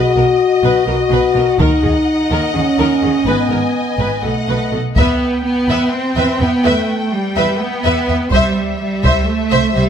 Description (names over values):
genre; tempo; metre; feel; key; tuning
cinematic, epic orchestral film score; 251 BPM (eighths); 7/8; straight; E minor from 5.0 s; A4 = 440 Hz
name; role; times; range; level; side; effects
warm symphonic violin section; melody; 0.0-9.9 s; D#5 to G#5; -25 LUFS; left 4 dB; none
warm symphonic violin section; second line; 0.0-9.8 s; D#5 to E5; -22 LUFS; left 2 dB; none
rich studio viola section; accompaniment; 0.0-9.8 s; G#4 to C5; -22 LUFS; right 1 dB; none
dark French horn section; sustained chords; 0.0-4.7 s; A3 to F#4; -15 LUFS; left 2 dB; none
rich symphonic cello section; bass; 0.2-9.9 s; G#2 to C4; -19 LUFS; right 2 dB; none
warm symphonic double bass section; bass; 0.2-9.8 s; G#1 to E2; -21 LUFS; right 2 dB; none
taiko ensemble; drums; 1.6-9.3 s; none; -18 LUFS; equal; none
room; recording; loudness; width
moderate scoring stage reverb, RT60 1.9 s; none; -13 LUFS; side -8 dB against mid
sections
0.0-5.0 A section; 5.0-9.9 B section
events
none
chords
0.0 B; 1.6 D#m; 3.3 G#m; 4.2 B7; 5.0 Em; 8.3 C